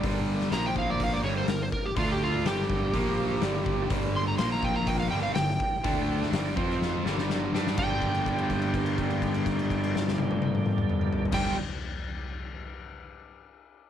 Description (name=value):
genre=blues rock power trio and southern rock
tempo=124 BPM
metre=4/4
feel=straight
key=G minor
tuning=A4 = 440 Hz
part: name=overdriven slide guitar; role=melody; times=0.0-11.6 s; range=F4 to C6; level=-32 LUFS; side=right 1 dB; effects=none
part: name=overdriven tonewheel organ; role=sustained chords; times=0.0-11.5 s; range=F3 to F5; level=-39 LUFS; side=right 12 dB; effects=slow rotary speaker, chorus vibrato
part: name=cranked stack guitar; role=riff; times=0.0-11.6 s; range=G2 to G4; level=-30 LUFS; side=equal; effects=overdrive, spring reverb
part: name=fuzz fingered electric bass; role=bass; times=0.0-11.5 s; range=G1 to G2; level=-32 LUFS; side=right 1 dB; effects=overdrive
part: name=oversized low-tuned drum kit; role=drums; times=0.0-11.4 s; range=crash cymbal, hi-hat, kick drum, snare drum, toms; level=-31 LUFS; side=left 3 dB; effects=none
room=small room ambience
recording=1960s-style stereo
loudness=-25 LUFS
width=side -10 dB against mid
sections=0.0-7.8 A section; 7.8-11.6 B section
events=drum fill 6.8-7.8; held note 7.8-11.3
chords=0.0 Gm; 0.5 Bb5; 1.2 Gm; 2.0 D5; 2.5 Gm; 2.9 Bb5; 3.4 Gm; 4.4 Bb5; 5.1 Gm; 5.8 D5; 6.3 Gm; 6.6 F5; 7.1 Gm